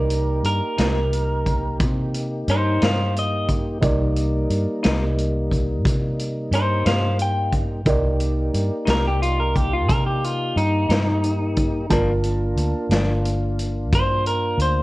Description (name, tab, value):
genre	slow blues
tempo	59 BPM (dotted quarters)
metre	12/8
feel	straight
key	unclear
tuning	A4 = 441 Hz
part	electric guitar through a small old amp	melody	0.0-14.8 s	Eb4 to G5	-23 LUFS	equal	spring reverb
part	dark concert grand piano	accompaniment	0.0-14.8 s	Eb4 to D6	-29 LUFS	right 2 dB	none
part	mellow tonewheel organ	sustained chords	0.0-14.8 s	G3 to G4	-28 LUFS	equal	overdrive, chorus vibrato, slow rotary speaker
part	vintage muted fingered electric bass	bass	0.0-14.8 s	G1 to C3	-22 LUFS	equal	none
part	vintage drum kit	drums	0.1-14.8 s	hi-hat, kick drum, snare drum	-23 LUFS	equal	none
part	semi-hollow electric guitar	accompaniment	0.8-13.1 s	G2 to Eb4	-27 LUFS	left 4 dB	tremolo
room	light reverb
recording	worn, warbling old tape, cassette tape, warbly pitch drift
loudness	-19 LUFS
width	side -19 dB against mid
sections	0.0-14.8 A section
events	none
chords	0.0 Cm7; 11.9 Gm7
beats	0.79 1.80 2.81 | 3.82 4.83 5.84 6.85 | 7.86 8.87 9.88 10.89 | 11.90 12.91 13.92